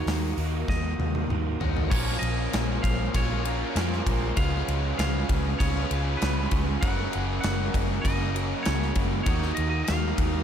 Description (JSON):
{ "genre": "rock, shoegaze and dream pop", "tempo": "98 BPM", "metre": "4/4", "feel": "straight", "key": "Bb minor", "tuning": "A4 = 442 Hz", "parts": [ { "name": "twangy electric guitar", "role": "melody", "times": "0.0-10.4 s", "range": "Cb5 to Gb5", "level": "-36 LUFS", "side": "right 1 dB", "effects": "tape echo" }, { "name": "string machine, violas", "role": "sustained chords", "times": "0.0-10.4 s", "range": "Gb4 to Eb6", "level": "-39 LUFS", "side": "left 1 dB", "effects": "ensemble chorus" }, { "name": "biting overdriven guitar", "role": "riff", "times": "0.0-10.4 s", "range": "Gb2 to Gb4", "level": "-34 LUFS", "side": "left 12 dB", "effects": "lush chorus" }, { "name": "raw garage guitar", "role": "riff", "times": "0.0-10.4 s", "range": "Bb2 to Cb5", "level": "-33 LUFS", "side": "right 14 dB", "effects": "overdrive, reverse reverb" }, { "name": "vintage muted fingered electric bass", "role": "bass", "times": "0.1-10.4 s", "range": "Gb1 to F2", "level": "-28 LUFS", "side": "equal", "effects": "none" }, { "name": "gated 80s drum kit", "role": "drums", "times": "0.1-10.3 s", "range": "crash cymbal, hi-hat, kick drum, ride cymbal, snare drum, toms", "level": "-28 LUFS", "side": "equal", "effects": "none" }, { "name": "distorted electric guitar", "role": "riff", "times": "1.9-10.4 s", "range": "Gb2 to Eb4", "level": "-34 LUFS", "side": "equal", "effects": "overdrive" } ], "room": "little or no reverb", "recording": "none", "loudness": "-24 LUFS", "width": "side -8 dB against mid", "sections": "0.0-1.9 A section; 1.9-10.4 B section", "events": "drum fill 0.7-1.9", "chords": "0.0 Ebmadd9; 1.9 Bbm; 4.4 Db7; 6.8 Gb6; 9.3 Ebmadd9" }